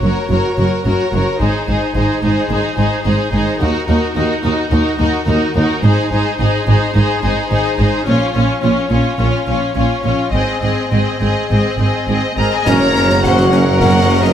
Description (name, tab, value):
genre	cinematic, heroic adventure film score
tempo	107 BPM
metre	4/4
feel	straight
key	Ab mixolydian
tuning	A4 = 440 Hz
part	rich symphonic violin section	melody	0.0-14.3 s	Bb4 to Bb5	-22 LUFS	left 4 dB	none
part	warm symphonic violin section	second line	0.0-14.3 s	F4 to Db5	-21 LUFS	left 2 dB	none
part	rich studio viola section	accompaniment	0.0-14.3 s	Gb3 to Gb4	-19 LUFS	equal	none
part	rich symphonic double bass section	bass	0.0-14.3 s	Gb1 to Eb2	-18 LUFS	right 2 dB	none
part	warm symphonic cello section	bass	0.0-14.3 s	Eb2 to Bb2	-19 LUFS	right 1 dB	none
part	mellow trumpet section	stabs	12.4-14.3 s	Eb4 to Bb4	-18 LUFS	equal	none
part	warm trombone section	sustained chords	12.7-14.0 s	Gb3 to Db4	-20 LUFS	right 3 dB	none
part	clear tuba	bass	12.7-14.3 s	Gb1	-19 LUFS	right 2 dB	none
part	concert snare drum, clash cymbals and concert bass drum	drums	12.7-14.3 s	none	-21 LUFS	left 1 dB	none
room	light reverb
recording	none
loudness	-13 LUFS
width	side -9 dB against mid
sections	0.0-12.7 A section; 12.7-14.3 B section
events	build-up 0.0-12.7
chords	0.0 Gb; 1.4 Ab; 3.6 Ebm; 5.8 Ab; 8.1 Bbm; 10.3 Ab; 12.7 Gb